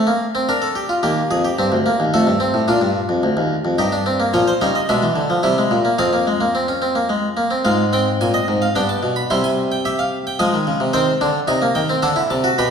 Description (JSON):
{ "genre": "classical, baroque-style 4-part fugue for harpsichord", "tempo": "109 BPM", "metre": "3/4", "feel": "straight", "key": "Eb major", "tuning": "A4 = 440 Hz", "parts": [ { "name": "harpsichord", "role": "solo", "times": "0.0-12.7 s", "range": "D2 to C6", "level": "-16 LUFS", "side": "equal", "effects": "none" } ], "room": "wet recital hall reverb, RT60 1.5 s", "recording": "recorded in a church or concert hall", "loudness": "-16 LUFS", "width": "side -7 dB against mid", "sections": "0.0-4.3 A section; 4.3-7.7 B section; 7.7-12.7 C section", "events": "none", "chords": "0.5 Bb/D; 1.0 Eb; 2.1 F; 2.7 Bb (rootless); 3.8 Eb/G; 4.3 Gm7b5/Bb; 4.9 Bdim7; 5.4 C7; 6.0 Fm; 7.7 Fm/Ab; 8.8 G; 9.3 C; 10.4 Fm; 10.9 Cm; 12.0 D7", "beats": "0.49 | 1.04 1.59 2.14 | 2.69 3.24 3.79 | 4.34 4.89 5.44 | 5.99 6.55 7.10 | 7.66 8.21 8.76 | 9.31 9.86 10.40 | 10.94 11.49 12.03 | 12.58" }